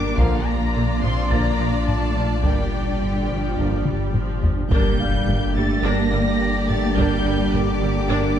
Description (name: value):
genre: cinematic, hybrid orchestral and electronic film score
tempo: 106 BPM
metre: 4/4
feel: straight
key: G minor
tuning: A4 = 440 Hz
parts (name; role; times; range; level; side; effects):
- rich symphonic violin section; melody; 0.0-8.4 s; F5 to Bb6; -29 LUFS; left 2 dB; none
- clear symphonic violin section; second line; 0.0-8.4 s; F4 to D5; -30 LUFS; left 4 dB; none
- granular cloud pad; sustained chords; 0.0-8.4 s; Bb2 to D5; -29 LUFS; equal; built-in reverb
- rich symphonic cello section; bass; 0.0-8.4 s; D3 to D4; -28 LUFS; right 2 dB; none
- saturated sub bass; bass; 0.0-8.4 s; G1 to Bb1; -26 LUFS; equal; none
- clear concert grand piano; texture; 0.0-8.4 s; G4 to A6; -37 LUFS; left 3 dB; none
- rich symphonic viola section; accompaniment; 0.2-8.4 s; D3 to D4; -29 LUFS; right 2 dB; none
- dark French horn section; sustained chords; 0.2-8.4 s; Bb3 to D4; -31 LUFS; left 3 dB; none
- warm trombone section; sustained chords; 0.2-8.4 s; D3 to G3; -29 LUFS; right 4 dB; none
- rich symphonic double bass section; bass; 0.2-8.2 s; G1 to Bb1; -27 LUFS; right 3 dB; none
- taiko ensemble; drums; 0.2-7.8 s; none; -25 LUFS; left 1 dB; none
- impact; sound effects; 4.7-7.0 s; none; -28 LUFS; left 1 dB; none
room: moderate scoring stage reverb, RT60 1.7 s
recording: dark, warm production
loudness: -18 LUFS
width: side -9 dB against mid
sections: 0.0-4.7 A section; 4.7-8.4 B section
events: drum fill 3.9-4.7; impact 4.7-7.0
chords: 0.2 Bb; 2.4 Gm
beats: | 0.18 0.75 1.31 1.88 | 2.44 3.01 3.58 4.14 | 4.71 5.28 5.84 6.41 | 6.97 7.54 8.11